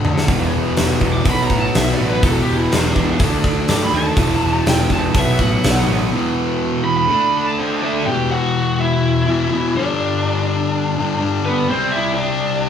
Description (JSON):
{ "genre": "quiet-loud alternative rock", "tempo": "124 BPM", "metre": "4/4", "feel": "straight", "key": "E minor", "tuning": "A4 = 441 Hz", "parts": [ { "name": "lead guitar through a small cranked amp", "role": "melody", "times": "0.0-12.7 s", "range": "B3 to D6", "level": "-21 LUFS", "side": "right 2 dB", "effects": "overdrive, slapback echo" }, { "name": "thick fuzz guitar", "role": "riff", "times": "0.0-12.7 s", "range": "E2 to D4", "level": "-20 LUFS", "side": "left 5 dB", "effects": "distortion" }, { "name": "big rock drum kit", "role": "drums", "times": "0.0-5.8 s", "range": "hi-hat, kick drum, snare drum, toms", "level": "-19 LUFS", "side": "equal", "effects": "none" }, { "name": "fuzz picked electric bass", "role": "bass", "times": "0.1-6.1 s", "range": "E1 to D3", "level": "-21 LUFS", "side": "right 1 dB", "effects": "overdrive" }, { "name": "fuzz guitar", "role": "riff", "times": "0.3-8.1 s", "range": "E2 to D4", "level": "-22 LUFS", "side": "right 5 dB", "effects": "distortion" } ], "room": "moderate large studio reverb, RT60 1.1 s", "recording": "band playing live in one room", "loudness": "-15 LUFS", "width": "side -8 dB against mid", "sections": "0.0-8.1 A section; 8.1-12.7 B section", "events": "drum fill 0.0; lead electric guitar solo 0.0-8.1; break 6.1-8.1", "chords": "0.3 E5; 1.3 B5; 2.2 E5; 3.2 D5; 4.2 E5; 5.1 B5; 6.1 E5; 7.1 D5; 8.1 Em; 9.8 G; 11.7 C" }